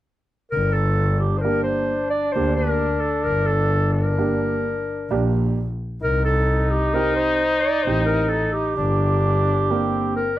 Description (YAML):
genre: klezmer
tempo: 66 BPM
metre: 3/4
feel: straight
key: G minor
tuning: A4 = 440 Hz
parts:
  - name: mellow clarinet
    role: melody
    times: 0.5-10.4 s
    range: G4 to D5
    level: -23 LUFS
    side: equal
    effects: none
  - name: bright trombone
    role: second line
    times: 0.5-10.3 s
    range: C4 to Eb4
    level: -25 LUFS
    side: left 2 dB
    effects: none
  - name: rich double bass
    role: bass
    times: 0.5-9.9 s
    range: G1 to D2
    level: -23 LUFS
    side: equal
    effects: none
  - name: warm upright piano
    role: accompaniment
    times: 1.4-10.2 s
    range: Bb3 to G4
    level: -25 LUFS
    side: right 6 dB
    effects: none
room: light reverb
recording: dry, close 1970s-style studio recording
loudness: -18 LUFS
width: side -14 dB against mid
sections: 0.5-10.4 A section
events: none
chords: 0.5 Gm; 6.0 Cm; 8.8 Gm